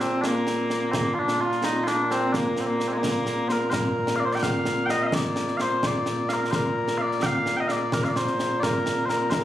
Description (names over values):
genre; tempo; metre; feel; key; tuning
scottish traditional, Scottish pipe music; 86 BPM (dotted quarters); 6/8; straight; Bb major; A4 = 440 Hz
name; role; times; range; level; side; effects
mellow small bagpipes; melody; 0.0-9.4 s; Bb2 to G5; -23 LUFS; equal; slapback echo
concert snare drum and concert bass drum; drums; 0.0-9.4 s; none; -29 LUFS; right 1 dB; none
room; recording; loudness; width
light reverb; recorded on a phone in the room, club reverb, compression; -22 LUFS; side -12 dB against mid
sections
0.0-3.7 A section; 3.7-9.4 B section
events
none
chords
none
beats
0.25 | 0.95 1.64 | 2.34 3.04 | 3.74 4.43 | 5.13 5.83 | 6.53 7.22 | 7.92 8.62 | 9.32